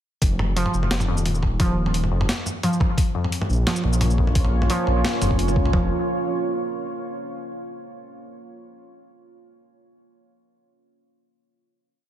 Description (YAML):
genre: half-time drum and bass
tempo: 174 BPM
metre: 4/4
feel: swing 54% on 16ths, half-time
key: unclear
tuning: A4 = 443 Hz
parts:
  - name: dark detuned saw bass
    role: bass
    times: 0.2-5.9 s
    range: Eb1 to Db2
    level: -22 LUFS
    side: equal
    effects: none
  - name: boom bap sampler-style drum kit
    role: drums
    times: 0.2-5.8 s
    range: kick drum, toms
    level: -22 LUFS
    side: equal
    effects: none
  - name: boom bap sampler-style drum kit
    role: drums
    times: 0.2-5.7 s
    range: hi-hat, shaker, snare drum, toms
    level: -26 LUFS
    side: equal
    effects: none
  - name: warbly dusty pluck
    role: arpeggios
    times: 0.6-5.9 s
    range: F2 to F3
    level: -26 LUFS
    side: equal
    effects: chorus, cassette tape, digital delay
  - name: deep dark ambient pad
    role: sustained chords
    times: 3.5-5.9 s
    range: Bb3 to Db5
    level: -27 LUFS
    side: right 2 dB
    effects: chorus, built-in reverb, sidechain pumping
room: little or no reverb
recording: none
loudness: -20 LUFS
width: side -11 dB against mid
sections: 0.2-5.7 drop; 5.7-7.1 final chord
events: drop 0.2-5.7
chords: 0.2 Ebsus2; 3.0 Bbm; 5.7 Fm